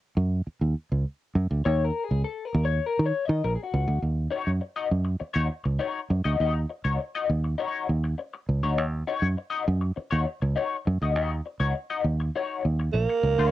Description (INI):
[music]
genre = funk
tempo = 101 BPM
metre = 4/4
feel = straight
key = Eb minor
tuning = A4 = 440 Hz
[part]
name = fingered electric bass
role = bass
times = 0.2-13.5 s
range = Bb1 to Eb3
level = -24 LUFS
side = right 1 dB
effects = none
[part]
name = electric guitar at the edge of break-up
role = accompaniment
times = 1.7-13.5 s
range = Eb4 to Eb5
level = -29 LUFS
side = left 6 dB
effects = wah, lush chorus
[part]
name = growling tenor saxophone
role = melody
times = 12.9-13.5 s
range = Bb3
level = -23 LUFS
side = right 5 dB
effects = none
[sound]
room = light reverb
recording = home recording on cassette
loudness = -24 LUFS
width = side -14 dB against mid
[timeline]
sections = 0.0-4.0 A section; 4.0-13.5 B section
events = clean electric guitar solo 0.0-4.0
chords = 0.0 Ebm7